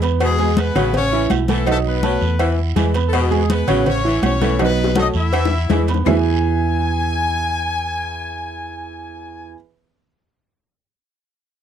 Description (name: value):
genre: latin, salsa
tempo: 164 BPM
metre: 4/4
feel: straight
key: E major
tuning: A4 = 441 Hz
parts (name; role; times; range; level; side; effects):
- bright saxophone section; second line; 0.0-6.2 s; B2 to F#3; -23 LUFS; left 8 dB; none
- clear grand piano; accompaniment; 0.0-9.6 s; C#3 to E6; -22 LUFS; right 10 dB; none
- hollow-body short-scale fingered electric bass; bass; 0.0-9.5 s; A1 to E2; -21 LUFS; equal; none
- agogo bells and timbales; percussion; 0.0-6.2 s; none; -27 LUFS; right 8 dB; none
- congas; percussion; 0.0-6.2 s; none; -23 LUFS; left 4 dB; none
- cowbell and bongos; percussion; 0.0-6.1 s; none; -26 LUFS; left 9 dB; none
- guiro; percussion; 0.0-6.1 s; none; -34 LUFS; right 23 dB; none
- brilliant horn section; melody; 0.2-9.6 s; G#3 to G#5; -23 LUFS; left 3 dB; none
- claves; percussion; 0.2-6.2 s; none; -31 LUFS; left 29 dB; none
room: little or no reverb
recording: dry, close 1970s-style studio recording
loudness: -15 LUFS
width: side -9 dB against mid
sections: 0.0-6.1 A section; 6.1-9.0 B section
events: drum fill 4.6-6.1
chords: 0.0 E; 0.9 A; 1.7 B7; 2.4 E; 3.9 A; 4.6 B7; 5.3 E